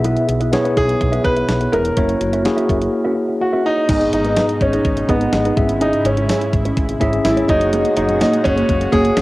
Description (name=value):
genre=1980s-style pop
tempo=125 BPM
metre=4/4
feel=straight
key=unclear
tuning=A4 = 437 Hz
part: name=tine electric piano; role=accompaniment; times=0.0-9.2 s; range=G#2 to E5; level=-19 LUFS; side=left 1 dB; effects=medium stereo tremolo, cassette tape
part: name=mellow electric guitar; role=riff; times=0.0-9.2 s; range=A#3 to E5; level=-24 LUFS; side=right 2 dB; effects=wide subtle chorus, cassette tape
part: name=woody fretless electric bass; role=bass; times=0.0-9.2 s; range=E1 to B1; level=-23 LUFS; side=equal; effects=none
part: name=clean 12-bit digital drum machine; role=drums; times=0.0-9.2 s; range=crash cymbal, hi-hat, kick drum, snare drum, tambourine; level=-22 LUFS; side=equal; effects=none
part: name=warm grand piano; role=melody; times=0.8-9.2 s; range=B3 to B4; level=-19 LUFS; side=equal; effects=cassette tape
part: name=lush unison pad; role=sustained chords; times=3.9-9.2 s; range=A#2 to F#4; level=-26 LUFS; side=equal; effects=chorus, cassette tape
part: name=synth chime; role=second line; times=7.2-9.2 s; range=C#5 to G#5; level=-26 LUFS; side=left 2 dB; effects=none
room=light reverb, digital ambience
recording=home recording on cassette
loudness=-14 LUFS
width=side -19 dB against mid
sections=0.0-3.9 A section; 3.9-9.2 B section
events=none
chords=0.0 E/B; 2.0 F#7; 3.9 G#m; 5.6 C#m/G#; 7.5 F#add9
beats=| 0.05 0.53 1.01 1.49 | 1.97 2.45 2.93 3.41 | 3.89 4.37 4.85 5.33 | 5.81 6.29 6.77 7.25 | 7.73 8.21 8.69 9.17